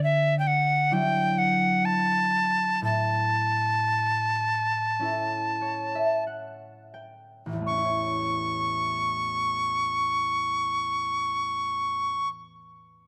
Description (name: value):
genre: celtic folk, Celtic slow air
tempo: 42-69 BPM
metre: 4/4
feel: rubato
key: A mixolydian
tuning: A4 = 440 Hz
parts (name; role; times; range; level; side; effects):
- alto recorder; melody; 0.0-12.3 s; E5 to C#6; -27 LUFS; equal; none
- concert harp; accompaniment; 0.0-12.5 s; A1 to G5; -32 LUFS; equal; none
room: light reverb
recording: close, detailed microphones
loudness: -26 LUFS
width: mono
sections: 0.0-7.6 A section; 7.6-13.1 B section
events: slowing down 0.0-7.6; harp fill 5.0-7.6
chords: 0.0 Dadd9; 2.8 A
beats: 0.02 0.91 1.84 | 2.82 3.87 5.00 6.27 | 7.65 9.03 10.37 11.69